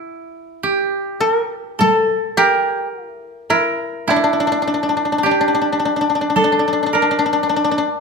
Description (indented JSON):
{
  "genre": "japanese traditional, Japanese chamber music",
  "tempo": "52 BPM",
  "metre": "4/4",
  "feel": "rubato",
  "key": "A in sen",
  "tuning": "A4 = 444 Hz",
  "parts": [
    { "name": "koto", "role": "second line", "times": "0.0-8.0 s", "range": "E4 to Bb4", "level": "-20 LUFS", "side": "right 3 dB", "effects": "none" },
    { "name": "koto", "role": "melody", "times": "1.2-8.0 s", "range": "D4 to Bb4", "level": "-17 LUFS", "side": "left 2 dB", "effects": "none" },
    { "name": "taiko ensemble", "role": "percussion", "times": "1.8-6.6 s", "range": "none", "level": "-23 LUFS", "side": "equal", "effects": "none" }
  ],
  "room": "moderate recital hall reverb, RT60 1.4 s",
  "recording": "minimal, uncompressed stereo recording",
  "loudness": "-15 LUFS",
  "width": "side -4 dB against mid",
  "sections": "0.0-8.0 A section",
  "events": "none",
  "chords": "none",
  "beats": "0.64 1.79 2.94 | 4.09 5.24 6.36 7.49"
}